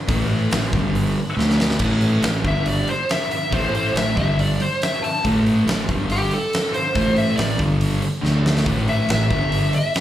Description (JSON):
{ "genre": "blues rock power trio and southern rock", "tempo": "140 BPM", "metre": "4/4", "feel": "straight", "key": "unclear", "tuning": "A4 = 440 Hz", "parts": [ { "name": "thick fuzz guitar", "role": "riff", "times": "0.1-9.7 s", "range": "G2 to D4", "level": "-21 LUFS", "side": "equal", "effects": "distortion" }, { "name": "fuzz fingered electric bass", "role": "bass", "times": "0.1-9.7 s", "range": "G1 to D2", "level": "-24 LUFS", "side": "equal", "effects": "overdrive" }, { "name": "huge arena drum kit", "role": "drums", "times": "0.1-10.0 s", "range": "crash cymbal, hi-hat, kick drum, snare drum", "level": "-24 LUFS", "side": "equal", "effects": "none" }, { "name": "dark smooth lead guitar", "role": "melody", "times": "2.5-10.0 s", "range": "G4 to A5", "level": "-22 LUFS", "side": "left 1 dB", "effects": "overdrive, slapback echo" } ], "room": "small room reverb", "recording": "live gig heard through the venue's PA, club reverb", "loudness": "-17 LUFS", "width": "side -12 dB against mid", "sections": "0.0-1.8 A section; 1.8-10.0 B section", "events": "drum fill 1.4-1.8, 8.2-8.7; lead electric guitar solo 1.8-10.0", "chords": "0.1 A5; 0.7 G5; 1.4 D5; 1.8 A5; 2.5 G5; 3.5 A5; 4.2 G5; 5.2 A5; 5.9 G5; 7.0 A5; 7.6 G5; 8.2 D5; 8.7 A5; 9.3 G5" }